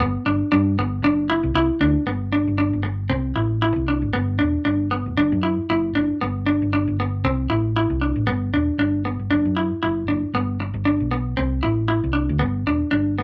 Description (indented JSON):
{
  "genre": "highlife guitar band",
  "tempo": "116 BPM",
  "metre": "4/4",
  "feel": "swing 55% on 16ths",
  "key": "G major",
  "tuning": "A4 = 440 Hz",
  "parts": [
    { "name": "clean electric guitar", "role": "accompaniment", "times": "0.0-13.2 s", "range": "B3 to E4", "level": "-23 LUFS", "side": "equal", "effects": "none" },
    { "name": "hollow-body short-scale fingered electric bass", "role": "bass", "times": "0.0-13.2 s", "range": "E1 to G2", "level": "-26 LUFS", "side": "equal", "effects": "none" }
  ],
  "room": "wet small room reverb, RT60 0.5 s",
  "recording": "none",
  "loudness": "-21 LUFS",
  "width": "mono",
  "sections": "0.0-2.1 A section; 2.1-13.2 A section",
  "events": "none",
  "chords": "0.0 G; 1.0 Dadd9/F#; 2.1 G; 3.1 C; 4.1 G; 5.2 Dadd9/F#; 6.2 G; 7.2 C; 8.3 G; 9.3 Dadd9/F#; 10.3 G; 11.4 C; 12.4 G"
}